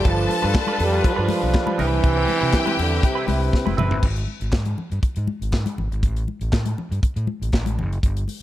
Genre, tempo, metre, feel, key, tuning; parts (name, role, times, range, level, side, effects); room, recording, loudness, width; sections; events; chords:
disco; 120 BPM; 4/4; straight; C major; A4 = 440 Hz
mellow trombone; melody; 0.0-3.8 s; C3 to G3; -24 LUFS; right 3 dB
clear studio string section; second line; 0.0-3.7 s; G4 to A5; -27 LUFS; left 4 dB
barky tine electric piano; accompaniment; 0.0-4.1 s; C3 to B4; -28 LUFS; left 4 dB; overdrive, auto-pan
semi-hollow electric guitar; accompaniment; 0.0-4.0 s; C4 to B4; -32 LUFS; right 8 dB; wah
clear studio string section; sustained chords; 0.0-4.0 s; C3 to B4; -30 LUFS; right 2 dB
congas; percussion; 0.0-8.4 s; -30 LUFS; left 5 dB
overdriven fingered electric bass; bass; 0.1-8.2 s; F1 to C3; -24 LUFS; equal
tight funk drum kit; drums; 0.1-8.4 s; crash cymbal, handclaps, hi-hat, kick drum, snare drum, toms; -22 LUFS; equal
studio reverb; -19 LUFS; side -14 dB against mid
0.0-4.0 A section; 4.0-8.4 B section
drum fill 3.5-4.0
0.0 G7; 1.8 Cmaj7; 4.0 N.C.